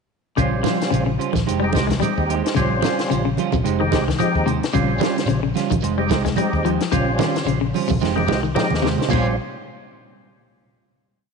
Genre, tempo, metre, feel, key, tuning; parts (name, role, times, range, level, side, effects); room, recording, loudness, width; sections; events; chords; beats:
afrobeat; 110 BPM; 4/4; swing 56% on 16ths; Bb dorian; A4 = 440 Hz
percussive tonewheel organ; accompaniment; 0.4-9.4 s; G3 to G4; -25 LUFS; equal; slow rotary speaker, overdrive, chorus vibrato
electric guitar at the edge of break-up; arpeggios; 0.4-9.3 s; Bb2 to Ab3; -24 LUFS; left 10 dB
semi-hollow electric guitar; stabs; 0.4-9.3 s; G3 to C5; -25 LUFS; right 11 dB; wide subtle chorus
fingered electric bass; bass; 0.4-9.4 s; F1 to Eb2; -24 LUFS; equal
compact cocktail drum kit; drums; 0.4-9.3 s; crash cymbal, hi-hat, kick drum, snare drum; -27 LUFS; left 4 dB
congas; percussion; 0.4-9.2 s; -26 LUFS; right 12 dB
shekere; percussion; 0.4-9.2 s; -32 LUFS; right 6 dB
moderate echo chamber reverb, RT60 2.1 s; 1960s-style stereo with parts hard left and right, nothing above 10.8 kHz; -18 LUFS; side -5 dB against mid
0.4-9.1 groove; 9.1-11.3 final chord
drum fill 8.0-9.1
0.4 Bbm69; 1.5 Fm9; 2.6 Bbm69; 3.6 Fm9; 4.7 Bbm69; 5.8 Fm9; 6.9 Bbm69; 8.0 Fm9; 9.1 Bbm69
| 0.38 0.92 1.46 2.01 | 2.55 3.10 3.65 4.19 | 4.74 5.29 5.83 6.38 | 6.92 7.47 8.02 8.56 | 9.11